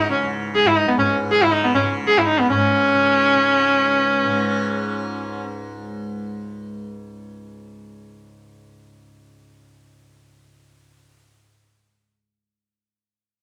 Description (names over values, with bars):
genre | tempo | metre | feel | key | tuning
indian classical, Hindustani | 139 BPM | 5/4 | straight | unclear | A4 = 442 Hz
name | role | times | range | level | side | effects
rich sarangi | melody | 0.0-5.4 s | B3 to G#4 | -19 LUFS | equal | none
tanpura | drone | 0.0-11.4 s | C#2 to C#3 | -30 LUFS | equal | none
tabla | percussion | 0.1-2.7 s | none | -31 LUFS | equal | none
room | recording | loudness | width
moderate studio ambience, RT60 0.5 s | none | -18 LUFS | mono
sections
0.0-2.5 A section; 2.5-4.6 B section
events
speeding up 0.0-4.6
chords
none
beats
| 0.33 0.77 1.20 1.64 2.07 | 2.50 2.93 3.36 3.79 4.21